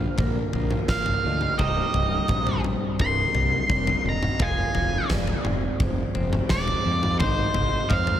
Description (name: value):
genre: post-rock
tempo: 86 BPM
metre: 4/4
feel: straight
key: C minor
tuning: A4 = 438 Hz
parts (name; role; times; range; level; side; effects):
- pedal steel guitar; sustained chords; 0.0-8.2 s; D3 to C5; -37 LUFS; right 2 dB; wide subtle chorus
- clean electric guitar; arpeggios; 0.0-8.2 s; C2 to F4; -32 LUFS; left 3 dB; tape echo
- vibraphone with medium hard mallets; arpeggios; 0.0-8.2 s; Bb4 to F5; -35 LUFS; right 4 dB; tape echo
- fuzz fingered electric bass; bass; 0.0-8.2 s; C1 to F2; -28 LUFS; equal; overdrive
- huge arena drum kit; drums; 0.2-8.2 s; kick drum, snare drum, toms; -25 LUFS; equal; none
- octave-fuzz lead guitar; melody; 0.9-8.2 s; C5 to C6; -26 LUFS; right 1 dB; distortion, tape echo
room: light reverb, small room ambience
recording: none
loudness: -21 LUFS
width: side -10 dB against mid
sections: 0.0-8.2 A section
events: none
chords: 0.0 Bb; 1.6 Cm; 4.4 Fm; 7.2 Ab